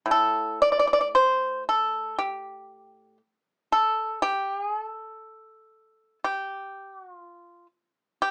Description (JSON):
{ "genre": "chinese traditional, Chinese solo plucked strings", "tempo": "55-62 BPM", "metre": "4/4", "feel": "rubato", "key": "unclear", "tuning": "A4 = 439 Hz", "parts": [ { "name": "pipa", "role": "solo", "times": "0.1-8.3 s", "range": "A2 to D5", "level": "-25 LUFS", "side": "equal", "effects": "none" } ], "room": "light reverb", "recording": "small speaker sound", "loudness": "-25 LUFS", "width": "mono", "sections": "0.0-8.3 A section", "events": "none", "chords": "none", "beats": "| 0.07 1.14 2.18 3.21 | 4.21 5.22 6.22 7.20 | 8.19" }